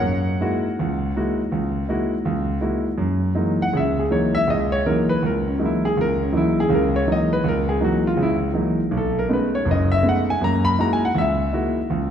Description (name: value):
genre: solo jazz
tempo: 162 BPM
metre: 4/4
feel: swing 63% on 8ths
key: F# mixolydian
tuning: A4 = 440 Hz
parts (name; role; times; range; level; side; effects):
- warm concert grand piano; solo; 0.0-12.1 s; F#1 to B5; -18 LUFS; equal; none
room: wet recital hall reverb, RT60 1.8 s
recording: recorded in a church or concert hall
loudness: -18 LUFS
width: side -8 dB against mid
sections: 0.0-3.0 A section; 3.0-12.1 B section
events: grand piano solo 3.0-12.1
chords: 0.0 F#13; 8.9 B13; 10.4 F#13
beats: | 0.03 0.40 0.77 1.14 | 1.51 1.88 2.25 2.62 | 2.99 3.36 3.73 4.10 | 4.47 4.84 5.21 5.58 | 5.95 6.32 6.69 7.06 | 7.43 7.81 8.18 8.55 | 8.92 9.29 9.66 10.03 | 10.40 10.77 11.15 11.52 | 11.89